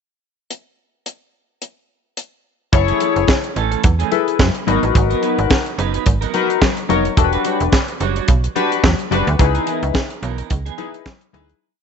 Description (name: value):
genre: early-eighties boogie funk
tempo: 108 BPM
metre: 4/4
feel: swing 56% on 16ths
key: unclear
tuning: A4 = 441 Hz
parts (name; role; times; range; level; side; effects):
- tight funk drum kit; drums; 0.5-11.6 s; handclaps, hi-hat, kick drum, snare drum; -17 LUFS; right 1 dB; none
- chorused polysynth; accompaniment; 2.7-11.5 s; D4 to C#5; -19 LUFS; left 12 dB; none
- clean electric guitar; riff; 2.7-11.5 s; E3 to C#5; -24 LUFS; right 13 dB; lush chorus
- slap-like FM bass; bass; 2.7-11.5 s; E1 to F#2; -19 LUFS; right 2 dB; none
- congas; percussion; 2.7-11.5 s; none; -27 LUFS; left 10 dB; none
room: light reverb, studio reverb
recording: 1960s-style stereo with parts hard left and right, nothing above 7.9 kHz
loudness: -15 LUFS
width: side -6 dB against mid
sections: 0.5-2.7 pickup bar; 2.7-11.6 verse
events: fade-out 9.4-11.6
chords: 0.5 N.C.; 2.7 F#m9; 4.7 G#m9; 7.2 Em9; 9.4 C#m9